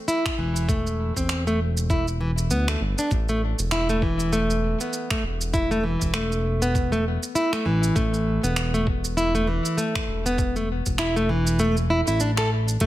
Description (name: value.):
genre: organic downtempo.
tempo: 99 BPM.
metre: 4/4.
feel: swing 58% on 16ths.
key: unclear.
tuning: A4 = 440 Hz.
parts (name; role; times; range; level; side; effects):
nylon-string guitar; arpeggios; 0.1-12.9 s; E3 to A4; -24 LUFS; equal; ping-pong delay.
organic electronic drum kit; drums; 0.1-12.9 s; finger snaps, hi-hat, shaker; -30 LUFS; right 2 dB; overdrive, small room ambience.
electronic kick drum; drums; 0.3-12.9 s; none; -26 LUFS; equal; small room ambience.
smooth gliding synth bass; bass; 0.4-12.9 s; E1 to D2; -25 LUFS; equal; tube saturation, sidechain pumping.
room: light reverb.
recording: none.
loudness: -21 LUFS.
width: side -15 dB against mid.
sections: 0.0-12.8 A section.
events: kick drops out 11.6-12.8.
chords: 0.0 A5; 3.1 E5.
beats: 0.08 | 0.69 1.29 1.90 2.50 | 3.11 3.72 4.32 4.93 | 5.53 6.14 6.75 7.35 | 7.96 8.56 9.17 9.78 | 10.38 10.99 11.60 12.20 | 12.81.